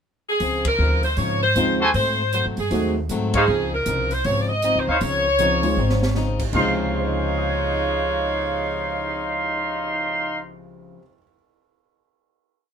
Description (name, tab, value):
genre	jazz, big band swing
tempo	157 BPM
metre	4/4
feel	swing 64% on 8ths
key	Db major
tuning	A4 = 440 Hz
part	bright saxophone section	melody	0.3-10.4 s	Ab3 to Eb5	-22 LUFS	right 1 dB	none
part	picked plugged-in swing-style acoustic guitar	accompaniment	0.4-11.0 s	Ab2 to Eb4	-29 LUFS	left 4 dB	none
part	upright bass	bass	0.4-10.9 s	Ab1 to A2	-25 LUFS	equal	none
part	open jazz drum kit	drums	0.4-9.5 s	crash cymbal, cymbal swell, hi-hat, kick drum, ride cymbal, snare drum	-32 LUFS	right 1 dB	none
part	warm concert grand piano	accompaniment	1.6-2.9, 5.6-11.3 s	C3 to Ab6	-27 LUFS	equal	none
part	clear trumpet section	stabs	1.8-10.4 s	Eb4 to C6	-23 LUFS	equal	none
room	moderate club reverb, RT60 0.6 s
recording	minimal, uncompressed stereo recording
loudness	-19 LUFS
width	side -7 dB against mid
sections	0.0-0.4 pickup bar; 0.4-6.5 A section; 6.5-9.6 final chord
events	band accent 0.6, 3.3; drum fill 5.8-6.2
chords	0.4 Dbmaj9; 1.9 Ab7b9; 3.5 Dbmaj9